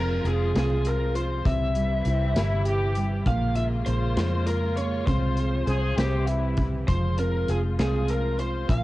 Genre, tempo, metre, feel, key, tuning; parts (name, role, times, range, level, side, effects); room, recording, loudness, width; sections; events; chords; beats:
six-eight pop ballad; 66 BPM (dotted quarters); 6/8; straight; F harmonic minor; A4 = 441 Hz
lead guitar through a small cranked amp; melody; 0.0-8.8 s; Ab4 to F5; -30 LUFS; equal; overdrive
dark upright piano; accompaniment; 0.0-8.8 s; C3 to Ab4; -32 LUFS; right 3 dB; cassette tape
warm studio string section; sustained chords; 0.0-8.8 s; C3 to F4; -34 LUFS; left 1 dB; cassette tape
vintage muted fingered electric bass; bass; 0.0-8.8 s; F1 to F2; -25 LUFS; equal
modern studio drum kit; drums; 0.3-8.8 s; hi-hat, kick drum, snare drum; -30 LUFS; equal
muted French horn section; second line; 2.1-6.7 s; C4 to Ab4; -31 LUFS; left 1 dB; cassette tape, tape echo
small room ambience; home recording on cassette; -22 LUFS; side -17 dB against mid
0.0-8.8 A section
0.0 Fm; 1.5 C; 3.3 Bbm7; 5.1 Fm/C; 6.0 C; 6.9 Fm
0.55 | 1.46 2.36 | 3.26 4.17 | 5.07 5.97 | 6.88 7.78 | 8.69